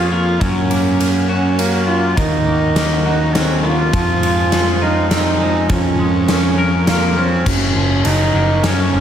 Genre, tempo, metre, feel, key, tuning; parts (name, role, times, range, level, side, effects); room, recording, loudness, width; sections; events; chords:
post-rock; 102 BPM; 3/4; straight; Gb lydian; A4 = 440 Hz
warm cello; melody; 0.0-9.0 s; Bb3 to F4; -18 LUFS; right 3 dB; slapback echo
hollow soft pad; sustained chords; 0.0-9.0 s; F3 to Db6; -28 LUFS; left 1 dB
twangy electric guitar; arpeggios; 0.0-9.0 s; Gb2 to Bb4; -23 LUFS; left 2 dB; analog chorus, slapback echo
fuzz picked electric bass; bass; 0.0-9.0 s; Gb1 to Gb2; -18 LUFS; equal; overdrive
big rock drum kit; drums; 0.4-8.8 s; crash cymbal, kick drum, ride cymbal, snare drum; -20 LUFS; left 1 dB
moderate lush hall reverb, RT60 1.9 s, small room reverb; big arena sound; -13 LUFS; side -9 dB against mid
0.0-7.5 A section; 7.5-9.0 B section
0.4 Gb; 2.2 Ebm7; 3.9 Fm; 5.7 Bbm7/F; 7.5 Gbmaj7